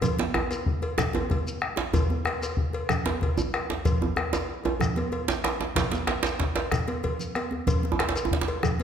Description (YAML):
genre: west african traditional, West African drum ensemble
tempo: 126 BPM (dotted quarters)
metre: 12/8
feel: straight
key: none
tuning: none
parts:
  - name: bombo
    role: percussion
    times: 0.0-8.8 s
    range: none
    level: -29 LUFS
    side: left 2 dB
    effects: none
  - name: congas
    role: percussion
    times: 0.0-8.8 s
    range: none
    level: -33 LUFS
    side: right 5 dB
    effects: none
  - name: cowbell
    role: percussion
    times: 0.0-8.8 s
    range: none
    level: -33 LUFS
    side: left 1 dB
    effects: none
  - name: djembe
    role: percussion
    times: 0.0-8.8 s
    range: none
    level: -32 LUFS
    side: left 3 dB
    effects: none
  - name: shekere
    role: percussion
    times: 0.0-8.8 s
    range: none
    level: -35 LUFS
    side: left 2 dB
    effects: none
  - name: djembe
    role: percussion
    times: 0.2-8.6 s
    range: none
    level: -29 LUFS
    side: right 5 dB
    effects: none
room: wet recital hall reverb, RT60 1.4 s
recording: none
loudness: -24 LUFS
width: side -8 dB against mid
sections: 0.0-8.8 A section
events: drum fill 7.0-7.7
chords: none